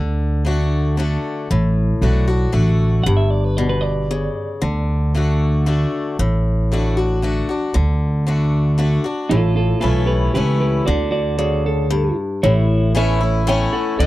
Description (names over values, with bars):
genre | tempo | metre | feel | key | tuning
honky-tonk and classic country | 115 BPM | 3/4 | straight | D major | A4 = 441 Hz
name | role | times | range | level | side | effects
picked swing-style acoustic guitar | accompaniment | 0.0-14.1 s | G2 to F#4 | -22 LUFS | left 3 dB | none
upright bass | bass | 0.0-14.1 s | G1 to D2 | -17 LUFS | right 1 dB | none
clean electric guitar | second line | 3.0-4.8, 9.3-14.1 s | E4 to G5 | -22 LUFS | right 2 dB | tape echo
room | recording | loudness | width
light reverb | dry, close 1970s-style studio recording | -16 LUFS | side -16 dB against mid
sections
0.0-12.4 A section; 12.4-14.1 B section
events
clean electric guitar solo 12.4-14.1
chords
0.0 D; 3.1 G; 4.6 D; 9.3 A; 10.9 D; 12.4 A